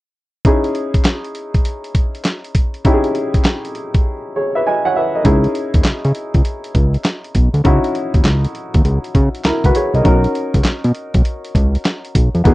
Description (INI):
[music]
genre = R&B, new jack swing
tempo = 100 BPM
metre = 4/4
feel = swing 65% on 16ths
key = C# dorian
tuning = A4 = 436 Hz
[part]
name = dusty soul sampler-style drum kit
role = drums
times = 0.4-12.5 s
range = handclaps, hi-hat, kick drum, snare drum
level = -15 LUFS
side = equal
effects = vintage 12-bit sampler grit
[part]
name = warm baby grand piano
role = accompaniment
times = 0.5-12.5 s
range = B3 to G#5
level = -19 LUFS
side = equal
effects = none
[part]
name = fat analog bass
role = bass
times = 5.3-12.5 s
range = B1 to C#3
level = -15 LUFS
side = equal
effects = none
[sound]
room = little or no reverb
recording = dry, close 1970s-style studio recording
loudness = -14 LUFS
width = side -18 dB against mid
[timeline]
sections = 0.4-5.2 A section; 5.2-12.5 B section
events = drums muted 4.0-5.2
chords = 0.4 C#madd9; 10.0 Bmaj7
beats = | 0.45 1.05 1.65 2.25 | 2.85 3.45 4.05 4.65 | 5.25 5.85 6.45 7.05 | 7.65 8.25 8.85 9.45 | 10.05 10.65 11.25 11.85 | 12.45